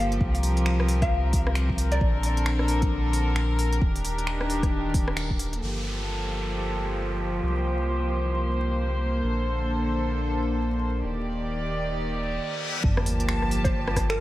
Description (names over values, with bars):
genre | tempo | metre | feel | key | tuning
future garage | 133 BPM | 4/4 | swing 61% on 16ths | G minor | A4 = 440 Hz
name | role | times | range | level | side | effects
mallet-like synth pluck | melody | 0.0-2.1, 13.6-14.2 s | Bb4 to F5 | -32 LUFS | left 1 dB | lush chorus, cassette tape, diffuse ambient delay
warm studio string section | sustained chords | 0.0-14.2 s | D3 to A5 | -28 LUFS | equal | sidechain pumping, low-pass filter
soft dub sub bass | bass | 0.0-14.2 s | Eb1 to C2 | -27 LUFS | equal | sidechain pumping
deep house drum kit | drums | 0.1-5.6, 13.0-14.2 s | finger snaps, hi-hat, rim click | -33 LUFS | equal | low-pass filter on hats, low-pass filter on snare
electronic kick drum | drums | 0.2-5.4, 12.8-14.1 s | none | -26 LUFS | equal | none
downlifter, reverse cymbal and sub drop | sound effects | 5.6-14.2 s | none | -34 LUFS | equal | none
drifting glass-harmonics texture | texture | 6.4-12.4 s | C5 | -40 LUFS | right 3 dB | none
room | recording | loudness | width
moderate plate reverb, RT60 2.2 s | dreamy mix soaked in reverb, vinyl crackle | -23 LUFS | side -15 dB against mid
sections
0.0-5.6 A section; 5.6-12.8 B section; 12.8-14.2 C section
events
band accent 5.2; filter sweep on string section 5.6-12.8; reverse cymbal 12.2-12.8; impact 12.8-14.2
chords
0.2 C7sus4; 2.0 Bbmaj9; 3.8 Ebmaj7; 5.6 Gm9; 7.4 C7sus4; 9.2 Bbmaj9; 11.0 Ebmaj7; 12.8 Gm9